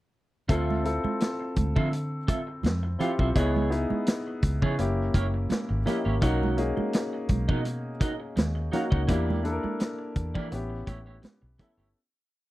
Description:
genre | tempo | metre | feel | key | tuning
lush 1970s-style soul | 84 BPM | 4/4 | swing 54% on 16ths | unclear | A4 = 441 Hz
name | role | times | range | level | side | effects
warm concert grand piano | accompaniment | 0.5-12.0 s | A#3 to E5 | -30 LUFS | left 2 dB | none
electric guitar through a small old amp | riff | 0.5-11.9 s | A3 to F5 | -33 LUFS | right 3 dB | none
vintage muted fingered electric bass | bass | 0.5-11.9 s | F#1 to E3 | -28 LUFS | equal | none
vintage drum kit | drums | 0.5-11.8 s | hi-hat, kick drum, snare drum | -27 LUFS | equal | none
congas | percussion | 0.7-11.8 s | none | -34 LUFS | right 5 dB | none
room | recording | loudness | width
little or no reverb | dry, close 1970s-style studio recording | -25 LUFS | side -17 dB against mid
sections
0.5-12.0 verse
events
fade-out 9.1-12.0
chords
0.5 Dm9; 3.4 C#m7; 4.8 F#7b9; 6.2 Bmaj7; 9.1 Em7b5; 10.5 A7

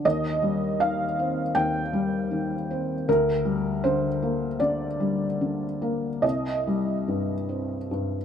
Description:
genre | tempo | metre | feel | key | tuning
neoclassical minimalist piano | 71-80 BPM | 4/4 | rubato | C minor | A4 = 440 Hz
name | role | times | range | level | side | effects
felt-muted upright piano | solo | 0.0-8.2 s | C2 to G5 | -23 LUFS | equal | none
room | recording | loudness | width
light reverb | none | -23 LUFS | side -8 dB against mid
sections
0.0-8.2 A section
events
none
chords
0.0 Cm/Eb; 3.1 Gm/D; 6.2 Cm

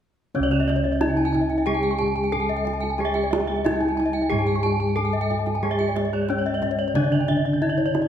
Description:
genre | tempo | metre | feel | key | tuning
Balinese gamelan | 91 BPM | 4/4 | straight | C# pelog | A4 = 439 Hz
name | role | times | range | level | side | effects
gamelan-type bronze metallophone | arpeggios | 0.3-8.1 s | C#5 to C#6 | -28 LUFS | left 5 dB | none
gamelan-type bossed gongs | bass | 0.3-8.1 s | C#2 to G#4-45c | -27 LUFS | equal | none
gamelan-type bronze metallophone | melody | 0.4-8.1 s | C#4 to A4-40c | -24 LUFS | left 1 dB | none
gamelan-type bronze metallophone | accompaniment | 0.4-8.1 s | C#3 to G#3-45c | -29 LUFS | right 2 dB | none
gamelan-type bronze metallophone | arpeggios | 0.4-7.9 s | C#5 to A5-40c | -30 LUFS | right 6 dB | none
kendang | percussion | 0.5-8.1 s | none | -32 LUFS | right 4 dB | none
room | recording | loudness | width
wet recital hall reverb, RT60 1.4 s | none | -20 LUFS | side -9 dB against mid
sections
0.4-8.1 A section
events
none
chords
none

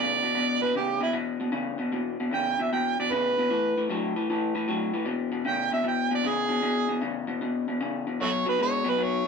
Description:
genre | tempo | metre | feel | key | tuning
blues | 153 BPM | 4/4 | swing 67% on 8ths | unclear | A4 = 440 Hz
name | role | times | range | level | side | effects
overdriven harmonica | melody | 0.0-9.3 s | E4 to G5 | -26 LUFS | right 4 dB | none
electric guitar through a small old amp | riff | 0.0-9.2 s | E2 to G#3 | -27 LUFS | left 4 dB | none
room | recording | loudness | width
moderate studio reverb, RT60 0.7 s | band playing live in one room | -24 LUFS | side -5 dB against mid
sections
0.0-1.9 A section; 1.9-9.3 B section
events
harmonica solo 1.9-9.3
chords
0.0 E5; 3.5 A5; 5.1 E; 8.2 B5

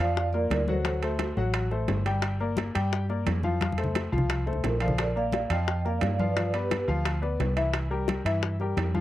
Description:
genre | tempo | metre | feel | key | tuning
latin, salsa | 174 BPM | 4/4 | straight | Bb major | A4 = 438 Hz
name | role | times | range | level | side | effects
vibraphone with medium mallets | melody | 0.0-1.4, 4.7-6.9 s | F4 to G5 | -30 LUFS | right 3 dB | none
clear upright piano | accompaniment | 0.0-9.0 s | E3 to G5 | -30 LUFS | left 3 dB | none
fingered electric bass | bass | 0.0-9.0 s | G1 to G2 | -29 LUFS | equal | none
bongos | percussion | 0.0-8.9 s | none | -34 LUFS | left 8 dB | none
congas | percussion | 0.2-9.0 s | none | -33 LUFS | left 2 dB | none
timbales | percussion | 0.5-8.9 s | none | -36 LUFS | right 7 dB | none
room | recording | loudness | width
light reverb | cassette tape | -25 LUFS | side -14 dB against mid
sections
0.0-9.0 A section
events
drum fill 3.6-5.0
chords
0.0 Bbmaj7; 0.9 D7; 2.2 Gm7; 3.6 F; 5.0 Bb; 6.4 G7; 7.7 C7

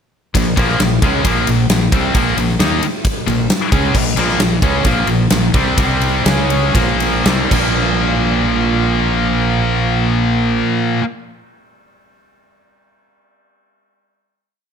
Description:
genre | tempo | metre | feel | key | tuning
hard rock | 112-134 BPM | 4/4 | straight | Bb minor | A4 = 439 Hz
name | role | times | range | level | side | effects
scooped high-gain guitar | riff | 0.3-11.0 s | Bb2 to Eb4 | -17 LUFS | left 8 dB | distortion
modern bright fingered electric bass | bass | 0.3-10.6 s | Bb1 to Eb2 | -20 LUFS | equal | none
huge arena drum kit | drums | 0.3-7.6 s | crash cymbal, kick drum, ride cymbal, snare drum | -17 LUFS | equal | none
distorted electric guitar | riff | 0.4-11.0 s | Bb2 to Eb4 | -20 LUFS | right 12 dB | distortion
room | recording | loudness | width
light reverb, small room ambience | none | -13 LUFS | side -7 dB against mid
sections
0.3-7.8 riff; 7.8-12.1 final hit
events
slowing down 3.9-7.8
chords
0.3 Bbm; 5.8 C5; 6.3 Db5; 6.7 Bb5; 7.3 C5; 7.5 Bb5

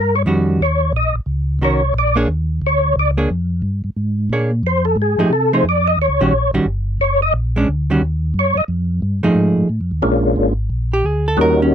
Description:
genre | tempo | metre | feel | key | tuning
soul jazz organ trio | 178 BPM | 4/4 | swing 63% on 8ths | unclear | A4 = 440 Hz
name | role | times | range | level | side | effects
percussive tonewheel organ | melody | 0.0-11.7 s | G3 to Eb5 | -16 LUFS | left 1 dB | chorus vibrato, fast rotary speaker
mellow tonewheel organ | bass | 0.0-11.7 s | F#1 to C3 | -18 LUFS | equal | chorus vibrato, slow rotary speaker
hollow-body jazz guitar | accompaniment | 0.3-11.7 s | Eb3 to C#5 | -16 LUFS | right 2 dB | none
room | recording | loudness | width
little or no reverb | close, detailed microphones | -15 LUFS | side -9 dB against mid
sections
0.0-10.0 A section; 10.0-11.7 A section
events
tonewheel organ solo 0.0-10.0; hollow-body jazz guitar solo 10.0-11.7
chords
0.0 Eb7#9; 0.6 Ebm7; 1.9 Bb7#9; 4.6 F7#9; 6.0 Eb7#9; 7.3 Bb7#9; 8.0 Ebm; 8.7 F7#9; 10.0 Bb7#9

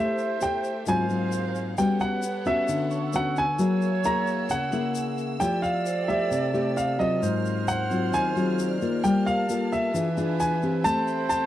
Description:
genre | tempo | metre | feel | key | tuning
bossa nova | 132 BPM | 4/4 | straight | unclear | A4 = 443 Hz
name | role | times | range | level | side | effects
dark grand piano | melody | 0.0-11.5 s | Eb5 to A#5 | -27 LUFS | equal | none
mellow alto flute | second line | 0.0-11.5 s | Bb4 to D5 | -32 LUFS | right 7 dB | none
nylon-string guitar | accompaniment | 0.0-11.5 s | Ab2 to C5 | -26 LUFS | left 2 dB | none
warm symphonic violin section | sustained chords | 0.0-11.5 s | A3 to F6 | -38 LUFS | equal | none
tube shaker | percussion | 0.2-11.5 s | none | -42 LUFS | left 11 dB | none
vibraphone with medium hard mallets | accompaniment | 2.9-9.5 s | Ab4 to E6 | -38 LUFS | right 4 dB | none
room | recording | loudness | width
light reverb, small room ambience | dry, close 1970s-style studio recording | -23 LUFS | side -12 dB against mid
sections
0.0-11.5 A section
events
none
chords
0.0 Am7; 0.9 Ab13; 1.8 Gmaj9#11; 3.6 F#9; 5.4 Fmaj9; 7.2 Ab13; 9.0 Gm9; 9.9 E7b9; 10.9 Am9

